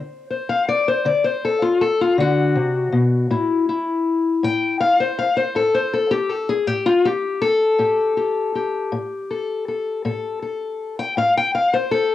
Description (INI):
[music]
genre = acoustic country blues, solo or duo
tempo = 53 BPM (dotted quarters)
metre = 12/8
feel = straight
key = unclear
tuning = A4 = 440 Hz
[part]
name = fingerpicked steel-string acoustic guitar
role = solo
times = 0.0-12.1 s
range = A2 to G5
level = -18 LUFS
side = left 3 dB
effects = cassette tape
[sound]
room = light reverb, small room ambience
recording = home recording on cassette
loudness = -18 LUFS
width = side -13 dB against mid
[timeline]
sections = 0.0-12.1 A section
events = steel-string acoustic guitar solo 0.0-12.1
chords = 0.0 D7; 3.3 A5